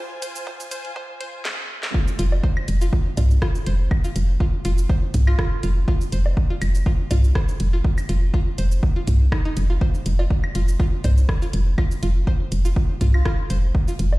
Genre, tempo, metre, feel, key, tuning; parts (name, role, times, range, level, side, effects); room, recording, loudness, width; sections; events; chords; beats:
minimal techno; 122 BPM; 4/4; swing 54% on 16ths; F minor; A4 = 439 Hz
string-like resonator pluck; riff; 0.0-13.9 s; Eb4 to C5; -33 LUFS; equal; chorus, cassette tape, sidechain pumping, ping-pong delay
clear studio string section; texture; 0.0-1.5 s; F4 to Ab5; -35 LUFS; equal; sidechain pumping
garage drum kit; drums; 0.2-14.1 s; hi-hat, rim click, shaker, snare drum; -33 LUFS; equal
electronic kick drum; drums; 0.5-13.9 s; -20 LUFS; equal; high-pass filter on kick
woody FM bass; bass; 2.2-14.2 s; F1 to C2; -18 LUFS; equal; sidechain pumping
electronic woodblock and toms; percussion; 2.3-14.2 s; -28 LUFS; right 1 dB; tape echo
airy dreamy lead; melody; 5.3-5.5, 13.1-13.3 s; F4; -34 LUFS; right 4 dB; chorus, tape echo
digital ambience; played on a big sound system in a bare room, stone room reverb, high-pass filter; -18 LUFS; side -20 dB against mid
0.0-1.9 A section; 1.9-14.2 B section
build-up 0.0-1.9; drum fill 1.5-1.9; drop 1.9-14.2
0.0 Fm; 1.9 F5
0.47 0.96 1.45 | 1.94 2.44 2.93 3.42 | 3.91 4.40 4.89 5.39 | 5.88 6.37 6.86 7.35 | 7.85 8.34 8.83 9.32 | 9.81 10.30 10.80 11.29 | 11.78 12.27 12.76 13.26 | 13.75